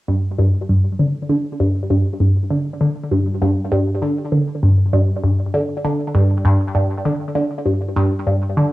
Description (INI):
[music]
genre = ambient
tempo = 99 BPM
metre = 4/4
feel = straight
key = unclear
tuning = A4 = 440 Hz
[part]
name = resonant blip pluck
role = solo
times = 0.1-8.7 s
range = G2 to D3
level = -16 LUFS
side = equal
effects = phaser, cassette tape, tape echo
[sound]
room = wet studio reverb, RT60 0.6 s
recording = home recording on cassette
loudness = -16 LUFS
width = side -17 dB against mid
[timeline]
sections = 0.1-8.7 A section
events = none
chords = none